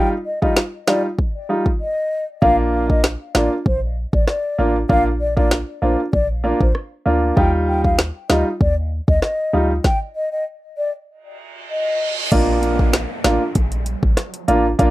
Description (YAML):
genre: dancehall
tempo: 97 BPM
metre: 4/4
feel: straight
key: Bb major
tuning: A4 = 440 Hz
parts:
  - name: mellow hollow concert flute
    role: melody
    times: 0.0-12.1 s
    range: C5 to G5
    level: -22 LUFS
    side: left 2 dB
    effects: ping-pong delay
  - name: clear grand piano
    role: accompaniment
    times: 0.0-14.9 s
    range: G3 to F4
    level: -18 LUFS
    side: right 1 dB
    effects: none
  - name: afro-pop drum kit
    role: drums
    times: 0.4-14.9 s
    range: crash cymbal, finger snaps, hi-hat, kick drum, rim click, snare drum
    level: -18 LUFS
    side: equal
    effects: overdrive
  - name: clean 808-style bass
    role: bass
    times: 2.4-14.9 s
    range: A1 to Eb2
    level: -21 LUFS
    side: equal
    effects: none
  - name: reverse cymbal and downlifter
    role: sound effects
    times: 11.4-14.9 s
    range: none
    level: -27 LUFS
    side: right 2 dB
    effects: none
room: light reverb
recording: rough home demo mix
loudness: -16 LUFS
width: side -17 dB against mid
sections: 0.0-12.3 A section; 12.3-14.9 B section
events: break 1.8-2.4; stop 9.8-12.3; reverse cymbal 11.4-12.3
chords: 0.0 Ebadd9; 2.4 Bb; 7.4 Ebadd9; 12.3 Bb